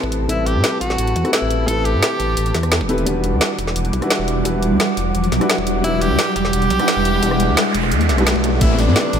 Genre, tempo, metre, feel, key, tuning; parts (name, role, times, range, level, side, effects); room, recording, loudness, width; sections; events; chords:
liquid drum and bass; 173 BPM; 4/4; straight; A dorian; A4 = 440 Hz
clear tenor saxophone; melody; 0.0-2.9, 5.8-9.2 s; C4 to A4; -22 LUFS; right 1 dB; low-pass filter, ping-pong delay
warm grand piano; accompaniment; 0.0-9.2 s; G3 to F#5; -22 LUFS; left 1 dB; low-pass filter, tape echo
glassy FM pad; sustained chords; 0.0-9.2 s; G3 to D6; -26 LUFS; right 1 dB; ensemble chorus, built-in reverb, sidechain pumping
swelling detuned saw bass; bass; 0.0-9.2 s; E1 to A2; -20 LUFS; equal
electronic kick drum; drums; 0.0-8.7 s; -23 LUFS; equal
riser, noise sweep and downlifter; sound effects; 0.2-9.2 s; -24 LUFS; right 1 dB
drum and bass drum kit; drums; 0.1-9.2 s; hi-hat, rim click, snare drum; -21 LUFS; equal; overdrive, high-pass filter on hats, studio ambience, high-pass filter on snare
crunchy breakbeat drum kit; drums; 8.6-9.2 s; hi-hat, snare drum; -28 LUFS; left 1 dB
moderate lush hall reverb, RT60 1.9 s, small room ambience; -15 LUFS; side -8 dB against mid
0.0-8.6 A section
build-up 0.0-8.6; filter sweep on grand piano 0.0-8.6; riser 0.2-8.6; noise sweep 7.2-8.6
0.0 Am9; 3.1 Em9; 8.6 Am9